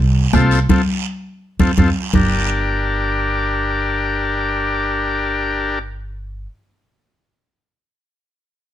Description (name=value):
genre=latin, cumbia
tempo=166 BPM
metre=4/4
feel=straight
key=G minor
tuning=A4 = 440 Hz
part: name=upright bass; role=bass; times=0.0-6.5 s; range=G1 to F2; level=-20 LUFS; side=equal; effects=none
part: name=combo organ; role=accompaniment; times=0.3-5.8 s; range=C4 to Bb4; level=-19 LUFS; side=left 3 dB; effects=none
part: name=bombo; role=percussion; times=0.3-2.2 s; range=none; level=-19 LUFS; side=right 3 dB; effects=none
part: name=congas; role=percussion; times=0.3-2.2 s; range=none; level=-19 LUFS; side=left 2 dB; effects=none
part: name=guiro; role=percussion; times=0.3-2.2 s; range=none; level=-29 LUFS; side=right 8 dB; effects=none
room=light reverb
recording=dark, warm production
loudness=-15 LUFS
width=side -11 dB against mid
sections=0.0-2.1 A section; 2.1-5.0 B section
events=band accent 0.7-2.1; drum fill 1.2-2.1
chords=0.0 F; 2.1 Gm